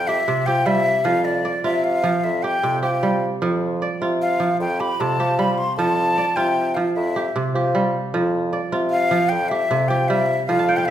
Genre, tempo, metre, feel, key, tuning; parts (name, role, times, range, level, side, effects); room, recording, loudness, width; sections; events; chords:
west african traditional, West African string and xylophone music; 102 BPM (dotted quarters); 12/8; straight; F major; A4 = 439 Hz
breathy jazz flute; melody; 0.0-10.9 s; D5 to C6; -21 LUFS; left 2 dB
kora; arpeggios; 0.0-10.9 s; C3 to A5; -22 LUFS; right 3 dB
mellow bassoon; bass; 0.0-10.9 s; F2 to F3; -25 LUFS; left 1 dB
wet recital hall reverb, RT60 1.6 s; minimal, uncompressed stereo recording; -18 LUFS; side -11 dB against mid
0.0-10.9 A section
kora fill 10.6-10.9
0.0 C/F